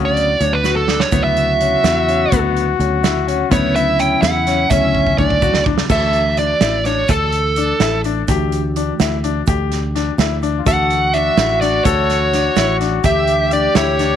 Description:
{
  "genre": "progressive instrumental, band music in an uneven meter",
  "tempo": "252 BPM (eighths)",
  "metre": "5/8",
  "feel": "straight",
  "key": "D major",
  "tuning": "A4 = 440 Hz",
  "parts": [
    { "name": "warm flugelhorn", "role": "second line", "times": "0.0-5.7, 10.6-14.2 s", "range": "C#4 to G4", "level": "-22 LUFS", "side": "left 10 dB", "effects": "none" },
    { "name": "tine electric piano", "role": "accompaniment", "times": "0.0-14.2 s", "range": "C#3 to F#5", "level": "-26 LUFS", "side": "equal", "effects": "overdrive, fast stereo tremolo" },
    { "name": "clear concert grand piano", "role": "arpeggios", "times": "0.0-14.2 s", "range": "C#3 to A4", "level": "-22 LUFS", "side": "left 11 dB", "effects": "none" },
    { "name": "fingered electric bass", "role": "bass", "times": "0.0-14.2 s", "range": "A1 to E2", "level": "-20 LUFS", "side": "equal", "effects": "none" },
    { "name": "dark smooth lead guitar", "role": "melody", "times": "0.1-8.0, 10.7-14.2 s", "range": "A4 to G5", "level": "-17 LUFS", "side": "right 3 dB", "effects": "overdrive" },
    { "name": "loose indie drum kit", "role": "drums", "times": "0.2-14.1 s", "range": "crash cymbal, hi-hat, kick drum, snare drum", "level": "-20 LUFS", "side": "right 5 dB", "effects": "none" },
    { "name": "tube shaker", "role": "percussion", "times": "0.4-14.0 s", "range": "none", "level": "-36 LUFS", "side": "right 18 dB", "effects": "none" }
  ],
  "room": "light reverb, small room ambience",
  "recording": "1960s-style stereo with parts hard left and right",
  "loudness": "-13 LUFS",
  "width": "side -9 dB against mid",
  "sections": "0.0-5.9 A section; 5.9-14.2 B section",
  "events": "lead electric guitar solo 0.0-5.9; drum fill 0.6-1.1, 4.9-5.9; tine electric piano fill 2.8-3.5",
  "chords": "0.0 Dmaj7; 5.9 D; 8.3 G5/D; 10.7 Dmaj7; 13.0 G5/D"
}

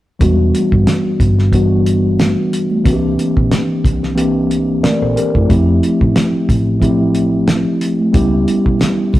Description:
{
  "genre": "lush 1970s-style soul",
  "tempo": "91 BPM",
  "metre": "4/4",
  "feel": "swing 54% on 16ths",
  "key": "E minor",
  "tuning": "A4 = 440 Hz",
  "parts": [
    { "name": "mellow tine electric piano", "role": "accompaniment", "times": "0.2-9.2 s", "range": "E3 to D5", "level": "-14 LUFS", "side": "equal", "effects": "medium stereo tremolo" },
    { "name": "hollow-body short-scale fingered electric bass", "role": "bass", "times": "0.2-9.2 s", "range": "E1 to C#2", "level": "-17 LUFS", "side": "equal", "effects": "none" },
    { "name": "cloth-damped thuddy drum kit", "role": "drums", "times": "0.2-9.2 s", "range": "hi-hat, kick drum, snare drum", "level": "-16 LUFS", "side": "equal", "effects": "none" },
    { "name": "congas", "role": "percussion", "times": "0.2-9.2 s", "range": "none", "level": "-25 LUFS", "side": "right 2 dB", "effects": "none" }
  ],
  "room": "light reverb",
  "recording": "rough rehearsal-room recording, warm saturation",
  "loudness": "-11 LUFS",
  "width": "side -15 dB against mid",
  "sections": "0.2-9.2 A section",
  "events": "none",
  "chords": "0.2 Em7; 2.9 C7; 5.5 Fmaj9; 8.1 C#m7b5"
}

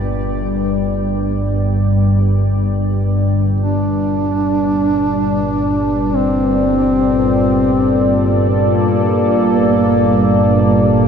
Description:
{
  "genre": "dark ambient drone",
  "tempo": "47 BPM",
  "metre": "4/4",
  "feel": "straight",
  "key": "G minor",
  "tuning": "A4 = 440 Hz",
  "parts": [
    { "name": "sweeping resonant pad", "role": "sustained chords", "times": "0.0-11.1 s", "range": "Bb2 to D5", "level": "-19 LUFS", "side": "equal", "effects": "chorus, phaser" },
    { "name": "organ-like drone", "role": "drone", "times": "0.0-11.1 s", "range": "G1 to G2", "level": "-16 LUFS", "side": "equal", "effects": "ensemble chorus, built-in reverb" },
    { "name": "dark duduk", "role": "melody", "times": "3.6-11.1 s", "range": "Bb3 to D4", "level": "-16 LUFS", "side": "right 1 dB", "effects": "ping-pong delay" }
  ],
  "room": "wet huge ambient reverb, RT60 7.4 s",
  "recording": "dreamy mix soaked in reverb",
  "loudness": "-13 LUFS",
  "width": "side -7 dB against mid",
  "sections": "0.0-3.6 A section; 3.6-11.1 B section",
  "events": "none",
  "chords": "0.0 Gmadd9"
}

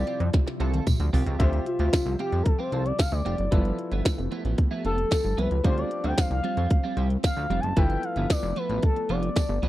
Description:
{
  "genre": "early-eighties boogie funk",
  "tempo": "113 BPM",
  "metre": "4/4",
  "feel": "straight",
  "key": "D dorian",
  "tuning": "A4 = 441 Hz",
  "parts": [
    { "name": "expressive synth lead", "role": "melody", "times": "0.0-9.7 s", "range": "F4 to A5", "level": "-30 LUFS", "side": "left 2 dB", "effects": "chorus, tape echo" },
    { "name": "warm grand piano", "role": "accompaniment", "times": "0.0-9.7 s", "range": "D4 to E5", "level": "-37 LUFS", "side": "left 4 dB", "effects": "none" },
    { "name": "soft string machine", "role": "sustained chords", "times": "0.0-9.7 s", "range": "C3 to E5", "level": "-37 LUFS", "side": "equal", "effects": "ensemble chorus" },
    { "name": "clean electric guitar", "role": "riff", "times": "0.0-9.7 s", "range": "F3 to A4", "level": "-33 LUFS", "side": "right 4 dB", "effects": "analog chorus" },
    { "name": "chorused synth bass", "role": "bass", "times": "0.0-9.7 s", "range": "F1 to F2", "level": "-26 LUFS", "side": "equal", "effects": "none" },
    { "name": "glitchy drum kit", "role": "drums", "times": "0.1-9.7 s", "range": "hi-hat, kick drum, snare drum, toms", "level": "-22 LUFS", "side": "equal", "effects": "none" },
    { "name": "tambourine", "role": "percussion", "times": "0.9-9.5 s", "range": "none", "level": "-40 LUFS", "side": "right 5 dB", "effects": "none" }
  ],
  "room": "little or no reverb",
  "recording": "dry, close 1970s-style studio recording",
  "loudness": "-23 LUFS",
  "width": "side -15 dB against mid",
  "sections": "0.0-1.4 A section; 1.4-9.7 B section",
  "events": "drum fill 0.3-1.4; analog synth lead solo 1.4-9.7",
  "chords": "0.0 Dm11; 3.5 G13; 5.6 Dm7; 7.8 G13"
}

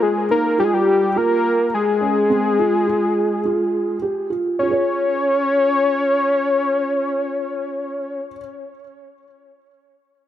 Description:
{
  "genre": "progressive instrumental, progressive",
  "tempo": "105 BPM",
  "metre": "5/4",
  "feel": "straight",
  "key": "Db lydian",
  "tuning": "A4 = 440 Hz",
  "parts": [
    { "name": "fat analog lead", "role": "melody", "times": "0.0-8.2 s", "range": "G4 to Db5", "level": "-18 LUFS", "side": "left 2 dB", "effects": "chorus, ping-pong delay" },
    { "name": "felt-muted upright piano", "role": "arpeggios", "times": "0.0-8.4 s", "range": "C4 to Db5", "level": "-23 LUFS", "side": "right 3 dB", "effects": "ping-pong delay" }
  ],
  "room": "wet studio reverb, RT60 0.8 s",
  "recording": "none",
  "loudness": "-16 LUFS",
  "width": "side -11 dB against mid",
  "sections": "0.0-4.6 A section; 4.6-7.4 B section",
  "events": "none",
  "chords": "0.0 Fmadd9; 4.6 Db"
}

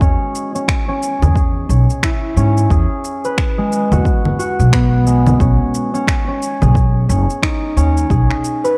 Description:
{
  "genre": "organic downtempo",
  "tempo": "89 BPM",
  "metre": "4/4",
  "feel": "swing 60% on 16ths",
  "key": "unclear",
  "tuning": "A4 = 437 Hz",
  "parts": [
    { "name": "concert harp", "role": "arpeggios", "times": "0.0-8.8 s", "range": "G#3 to B4", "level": "-21 LUFS", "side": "equal", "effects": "low-pass filter, delay" },
    { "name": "upright bass", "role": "bass", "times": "0.0-8.2 s", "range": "F#1 to G#2", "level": "-16 LUFS", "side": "equal", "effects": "sidechain pumping" },
    { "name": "electronic kick drum", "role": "drums", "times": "0.0-8.3 s", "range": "none", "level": "-20 LUFS", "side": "equal", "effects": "overdrive" },
    { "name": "electronic shaker, finger snaps and congas", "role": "drums", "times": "0.0-8.8 s", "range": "none", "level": "-24 LUFS", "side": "equal", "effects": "overdrive" }
  ],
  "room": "light reverb, studio reverb",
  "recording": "dark, warm production",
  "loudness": "-15 LUFS",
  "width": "mono",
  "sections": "0.0-8.8 A section",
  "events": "none",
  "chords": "0.0 E; 5.4 B"
}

